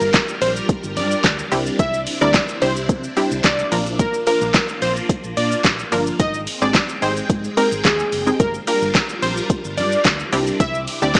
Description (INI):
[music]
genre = dance-pop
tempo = 109 BPM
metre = 4/4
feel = straight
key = G dorian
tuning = A4 = 440 Hz
[part]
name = plucky unison lead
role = melody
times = 0.0-11.2 s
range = Ab4 to E5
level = -21 LUFS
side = equal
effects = tape echo
[part]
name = wide unison pluck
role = accompaniment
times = 0.0-11.2 s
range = F3 to Bb4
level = -21 LUFS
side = equal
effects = sidechain pumping
[part]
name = phased string machine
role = sustained chords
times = 0.0-11.2 s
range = C3 to G5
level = -28 LUFS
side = equal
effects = ensemble chorus, phaser, sidechain pumping
[part]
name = vintage muted fingered electric bass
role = bass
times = 0.0-11.2 s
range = F#1 to C3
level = -27 LUFS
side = equal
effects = sidechain pumping
[part]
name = smooth R&B drum kit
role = drums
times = 0.0-11.2 s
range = handclaps, hi-hat, kick drum, shaker, snare drum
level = -19 LUFS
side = equal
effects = none
[part]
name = group handclap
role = percussion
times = 0.1-11.2 s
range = none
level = -28 LUFS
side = equal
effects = none
[sound]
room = little or no reverb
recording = dry, gritty hardware recording, small speaker sound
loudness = -16 LUFS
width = side -32 dB against mid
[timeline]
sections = 0.0-11.2 A section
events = none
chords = 0.0 Gm7; 1.5 Cadd9; 3.7 Bb; 6.2 Abmaj7; 8.4 Gm7; 10.3 Cadd9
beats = 0.14 0.69 1.24 | 1.79 2.34 2.89 3.44 | 4.00 4.54 5.09 5.65 | 6.20 6.75 7.30 7.85 | 8.40 8.95 9.50 10.05 | 10.60 11.15